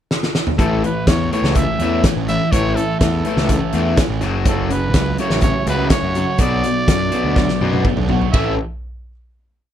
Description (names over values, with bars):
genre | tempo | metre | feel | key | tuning
indie rock | 124 BPM | 4/4 | straight | A major | A4 = 440 Hz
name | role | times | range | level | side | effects
loose indie drum kit | drums | 0.1-8.4 s | hi-hat, kick drum, ride cymbal, snare drum, toms | -19 LUFS | equal | none
growling trumpet | melody | 0.6-8.6 s | A4 to E5 | -23 LUFS | right 2 dB | slapback echo
crunchy overdriven guitar | riff | 0.6-8.5 s | F#2 to F#4 | -24 LUFS | right 10 dB | lush chorus, slapback echo
raw garage guitar | riff | 0.6-8.5 s | F#2 to A4 | -22 LUFS | left 9 dB | overdrive
fuzz picked electric bass | bass | 0.6-8.6 s | F#1 to F#2 | -21 LUFS | equal | overdrive
room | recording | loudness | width
little or no reverb | none | -15 LUFS | side -10 dB against mid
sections
0.0-0.6 pickup bar; 0.6-8.3 verse; 8.3-9.7 final chord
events
drum fill 0.1-0.6, 7.4-8.3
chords
0.0 N.C.; 0.6 A; 4.2 F#m; 6.4 Bm; 8.3 A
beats
0.11 | 0.60 1.08 1.57 2.05 | 2.53 3.02 3.50 3.98 | 4.46 4.95 5.43 5.91 | 6.40 6.88 7.36 7.85 | 8.33